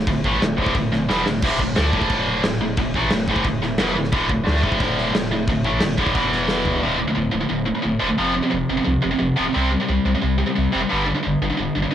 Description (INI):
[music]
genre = heavy metal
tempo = 177 BPM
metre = 4/4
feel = straight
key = D minor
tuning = A4 = 439 Hz
[part]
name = tight distorted guitar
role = riff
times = 0.0-11.9 s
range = D2 to D4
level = -19 LUFS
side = equal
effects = distortion, cassette tape
[part]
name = warm sub bass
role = bass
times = 0.0-11.9 s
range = D1 to D2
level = -27 LUFS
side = equal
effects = none
[part]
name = big rock drum kit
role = drums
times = 0.1-6.7 s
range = crash cymbal, kick drum, snare drum, toms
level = -23 LUFS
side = equal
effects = cassette tape
[sound]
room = light reverb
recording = home recording on cassette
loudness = -18 LUFS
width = side -10 dB against mid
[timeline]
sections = 0.0-6.8 A section; 6.8-11.9 B section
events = drum fill 1.1-1.4, 6.5-6.8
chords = 0.0 D5; 6.2 E5; 6.8 D5; 8.2 F5; 9.5 C5; 10.9 G5